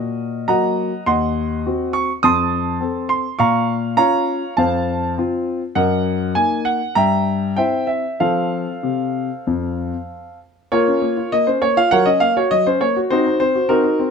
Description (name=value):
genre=classical-period piano sonatina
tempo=101 BPM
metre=4/4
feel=rubato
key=Bb minor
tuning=A4 = 440 Hz
part: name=warm grand piano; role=solo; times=0.0-14.1 s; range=Eb2 to Eb6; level=-16 LUFS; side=equal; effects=none
room=light reverb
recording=close, detailed microphones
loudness=-16 LUFS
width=side -6 dB against mid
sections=0.0-10.7 A section; 10.7-14.1 B section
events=none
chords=0.0 Ebm; 1.1 Cdim/Eb; 2.2 F7; 3.4 Bbm; 4.6 F; 5.8 Ebm/Gb; 7.0 C7/G; 8.2 F; 10.7 Bbm; 11.9 Gb; 13.1 Cm7b5